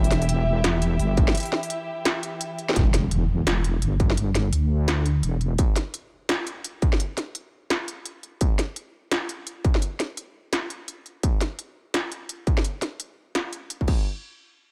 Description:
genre	half-time drum and bass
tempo	170 BPM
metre	4/4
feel	swing 60% on 16ths, half-time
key	E minor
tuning	A4 = 443 Hz
part	rich studio string section	sustained chords	0.0-2.8 s	E3 to E5	-32 LUFS	equal	vintage 12-bit sampler grit, sidechain pumping
part	deep soft wobble bass	bass	0.0-5.6 s	E1 to D2	-25 LUFS	equal	chorus
part	industrial drum kit	drums	0.0-14.0 s	crash cymbal, hi-hat, snare drum	-29 LUFS	equal	small room ambience
part	electronic kick drum	drums	1.2-14.0 s	none	-24 LUFS	equal	distortion, small room ambience
part	impact	sound effects	2.8-4.2 s	none	-31 LUFS	equal	none
room	light reverb, digital ambience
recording	none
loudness	-25 LUFS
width	mono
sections	0.0-2.8 A section; 2.8-14.1 B section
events	drop 0.0-2.8; break 1.4-2.8; impact 2.8-4.2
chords	0.0 Em; 13.9 N.C.

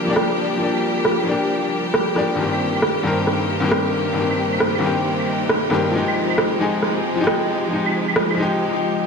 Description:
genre	future garage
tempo	135 BPM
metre	4/4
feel	swing 65% on 16ths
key	F dorian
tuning	A4 = 439 Hz
part	bright upright piano	accompaniment	0.0-9.1 s	G2 to Bb4	-20 LUFS	left 3 dB	ping-pong delay
part	rich symphonic string section	sustained chords	0.0-9.1 s	G2 to G4	-24 LUFS	right 1 dB	none
part	electronic rim click and claves	drums	0.2-8.4 s	none	-22 LUFS	right 2 dB	overdrive, low-pass filter on snare, low-pass filter on hats, low-pass filter on perc, low-pass filter on room
room	moderate huge ambient reverb, RT60 4.9 s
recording	none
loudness	-17 LUFS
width	side -5 dB against mid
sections	0.0-9.1 A section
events	break 8.6-9.1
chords	0.0 Gm7; 2.4 Cm7/G; 5.9 Fm9

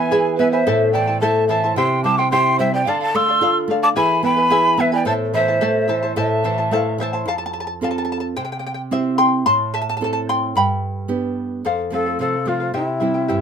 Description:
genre	andean folk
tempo	109 BPM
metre	2/4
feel	straight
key	A minor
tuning	A4 = 440 Hz
part	mellow large quena	melody	0.0-7.0, 11.9-13.4 s	E4 to E6	-19 LUFS	left 1 dB	none
part	breathy reedy pan flute	second line	0.0-7.0 s	B4 to C6	-23 LUFS	right 4 dB	none
part	charango	accompaniment	0.0-13.4 s	E4 to C6	-21 LUFS	left 2 dB	none
part	nylon-string guitar	accompaniment	0.0-13.4 s	F2 to A4	-22 LUFS	right 4 dB	none
room	light reverb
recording	minimal, uncompressed stereo recording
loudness	-16 LUFS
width	side -7 dB against mid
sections	0.0-7.3 A section; 7.3-11.6 B section; 11.6-13.4 C section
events	charango solo 7.3-11.6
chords	0.0 E; 0.7 Am; 1.8 C; 2.9 Dm; 4.0 E; 5.1 Am; 7.3 F; 8.4 C; 9.5 Am; 10.6 G; 11.6 F; 12.7 C

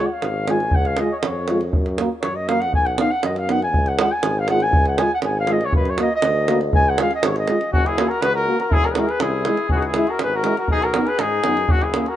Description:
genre	balkan folk, Balkan brass band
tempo	121 BPM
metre	2/4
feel	straight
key	Db mixolydian, F# mixolydian from 7.7 s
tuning	A4 = 440 Hz
part	warm flugelhorn	second line	0.0-12.2 s	C#4 to Ab5	-23 LUFS	equal	none
part	mellow euphonium	accompaniment	0.0-12.1 s	C#4 to F#4	-27 LUFS	left 4 dB	none
part	warm euphonium	accompaniment	0.0-12.0 s	Ab3 to Cb4	-28 LUFS	right 5 dB	none
part	warm tuba	bass	0.2-12.0 s	E1 to G#2	-26 LUFS	equal	none
part	davul	percussion	0.2-12.1 s	none	-22 LUFS	right 2 dB	none
part	warm cornet	melody	7.7-12.2 s	F#4 to B4	-21 LUFS	left 3 dB	none
room	light reverb, small room ambience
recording	rough home demo mix, nothing above 10.4 kHz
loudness	-17 LUFS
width	side -12 dB against mid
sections	0.0-7.7 A section; 7.7-12.2 B section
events	flugelhorn solo 0.0-7.7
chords	0.0 Db; 1.7 Gb; 2.7 Cb; 3.7 Db; 5.7 Gb; 6.7 Db; 7.7 F#; 8.7 E; 9.7 C#m; 10.7 B

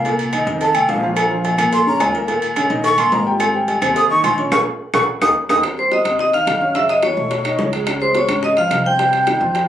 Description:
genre	Afro-Cuban jazz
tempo	215 BPM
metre	4/4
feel	straight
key	unclear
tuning	A4 = 442 Hz
part	breathy mellow jazz flute	second line	0.0-9.7 s	F5 to G6	-19 LUFS	equal	none
part	clear concert grand piano	accompaniment	0.0-9.6 s	Bb2 to Db6	-22 LUFS	right 1 dB	none
part	upright bass	bass	0.0-9.7 s	Ab1 to Gb2	-27 LUFS	equal	none
part	agogo bells and timbales	percussion	0.1-9.7 s	none	-22 LUFS	right 1 dB	none
part	cowbell and bongos	percussion	0.1-9.7 s	none	-27 LUFS	left 2 dB	none
part	claves	percussion	0.3-9.4 s	none	-28 LUFS	left 2 dB	none
part	vibraphone with medium hard mallets	melody	5.8-9.7 s	C5 to G5	-17 LUFS	left 1 dB	plate reverb
room	moderate small room reverb, RT60 0.5 s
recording	recorded on a phone in the room, club reverb, compression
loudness	-14 LUFS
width	side -10 dB against mid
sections	0.0-5.6 A section; 5.6-9.7 B section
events	flute solo 0.0-5.6; drum fill 4.5-5.6; band accent 4.5-5.6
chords	0.1 Cm7; 0.6 F7; 1.2 Bbm; 2.3 Eb7; 3.4 Abmaj9; 4.5 Bbm7; 5.1 Eb; 5.6 Eb13; 6.8 Gbm7; 7.3 B9; 7.9 Db; 9.0 Cmadd11

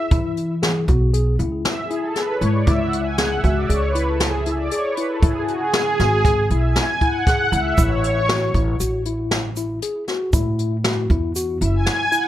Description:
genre	progressive instrumental, band music in an uneven meter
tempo	117 BPM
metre	5/4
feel	straight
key	unclear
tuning	A4 = 442 Hz
part	mellow tine electric piano	arpeggios	0.0-12.3 s	E4 to G#4	-25 LUFS	left 3 dB	medium stereo tremolo, digital delay, plate reverb
part	upright bass	bass	0.1-11.9 s	F#1 to E3	-21 LUFS	equal	none
part	jazz brush drum kit	drums	0.1-12.2 s	hi-hat, kick drum, snare drum	-21 LUFS	equal	none
part	analog string pad	accompaniment	1.6-12.3 s	F#4 to G#5	-22 LUFS	right 1 dB	ensemble chorus, plate reverb
part	tube shaker	percussion	7.8-12.3 s	none	-31 LUFS	right 6 dB	none
room	light reverb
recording	none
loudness	-17 LUFS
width	side -12 dB against mid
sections	0.0-12.3 A section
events	analog synth pad solo 0.0-12.3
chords	0.0 E; 2.7 C#m; 7.8 A

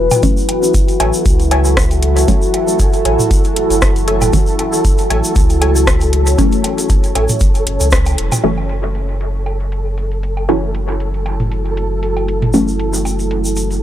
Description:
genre	dub techno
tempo	117 BPM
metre	4/4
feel	swing 55% on 16ths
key	F# minor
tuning	A4 = 440 Hz
part	deep dark ambient pad	sustained chords	0.0-13.8 s	E4 to C#5	-18 LUFS	equal	chorus, built-in reverb, sidechain pumping
part	filtered dub chord stab	stabs	0.0-13.8 s	E3 to C#4	-19 LUFS	equal	phaser, sidechain pumping, dub echo
part	pure sine sub bass	bass	0.0-13.8 s	E1 to C#2	-17 LUFS	equal	sidechain pumping
part	booming analog drum machine	drums	0.1-13.8 s	hi-hat, rim click	-20 LUFS	equal	overdrive, low-pass filter on hats, low-pass filter on cymbals, low-pass filter on snare, dub echo
part	egg shaker	percussion	0.1-8.4, 12.5-13.8 s	none	-24 LUFS	equal	none
part	electronic toms and woodblock	percussion	0.1-13.2 s	none	-23 LUFS	right 1 dB	sidechain pumping on perc, sidechain pumping on toms, dub echo
part	electronic kick drum	drums	0.2-8.0 s	none	-15 LUFS	equal	overdrive
part	flickering grainy texture	texture	1.2-13.8 s	A4	-26 LUFS	equal	built-in reverb, sidechain pumping
part	filtered dub chord stab	riff	1.0-7.2 s	A4 to G#5	-23 LUFS	equal	phaser, wide subtle chorus, sidechain pumping, dub echo
room	little or no reverb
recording	dry, gritty hardware recording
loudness	-12 LUFS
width	side -11 dB against mid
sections	0.0-8.4 A section; 8.4-13.8 B section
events	filter sweep on synth stab 0.0-8.4; band accent 7.9; filter sweep on ambient pad 8.4-13.8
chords	0.0 F#m7

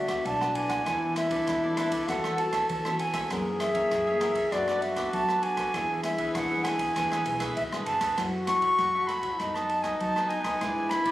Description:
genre	samba and choro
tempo	98 BPM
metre	4/4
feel	straight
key	unclear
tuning	A4 = 440 Hz
part	reedy concert flute	melody	0.0-11.1 s	D5 to C#6	-28 LUFS	equal	none
part	warm trombone	second line	0.0-11.1 s	D4 to A4	-31 LUFS	left 1 dB	none
part	nylon-string guitar	accompaniment	0.0-11.1 s	F#2 to B4	-37 LUFS	left 2 dB	none
part	vintage muted fingered electric bass	bass	0.0-11.1 s	F#1 to F#3	-38 LUFS	right 1 dB	none
part	cavaquinho	accompaniment	0.1-11.1 s	D4 to F#5	-37 LUFS	right 4 dB	none
part	open jazz drum kit	drums	0.1-11.1 s	kick drum, ride cymbal, rim click	-37 LUFS	equal	none
room	moderate large studio reverb, RT60 1.2 s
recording	recorded on a phone in the room, club reverb, compression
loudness	-25 LUFS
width	side -15 dB against mid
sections	0.0-11.1 A section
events	none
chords	0.0 D6; 0.9 E7sus4; 2.1 A69/E; 3.3 F#7; 4.5 Bm7/F#; 5.7 E7; 8.2 F#m7; 9.4 B7/F#

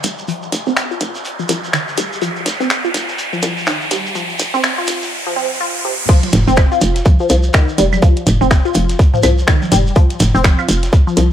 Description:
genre	minimal techno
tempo	124 BPM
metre	4/4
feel	swing 60% on 16ths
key	unclear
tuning	A4 = 440 Hz
part	resonant blip pluck	riff	0.0-11.2 s	C3 to F4	-19 LUFS	left 1 dB	phaser, sidechain pumping, ping-pong delay
part	hollow knocking FM bass	bass	0.0-11.3 s	F1 to C2	-16 LUFS	equal	sidechain pumping, high-pass filter
part	crunchy breakbeat drum kit	drums	0.0-11.3 s	hi-hat, snare drum	-31 LUFS	equal	none
part	garage drum kit	drums	0.0-11.3 s	crash cymbal, finger snaps, hi-hat	-20 LUFS	equal	none
part	shekere	percussion	0.0-11.3 s	none	-26 LUFS	right 2 dB	none
part	riser	sound effects	0.0-6.1 s	none	-22 LUFS	right 1 dB	none
part	electronic kick drum	drums	6.1-11.0 s	none	-11 LUFS	equal	none
part	electronic toms and woodblock	percussion	6.2-10.7 s	none	-20 LUFS	right 1 dB	none
room	light reverb, digital ambience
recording	high-pass filter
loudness	-12 LUFS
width	side -10 dB against mid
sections	0.0-6.1 A section; 6.1-11.3 B section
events	build-up 0.0-6.1; riser 0.0-6.1; filter sweep on synth pluck 0.0-6.1; drop 6.1-11.3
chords	0.0 F5

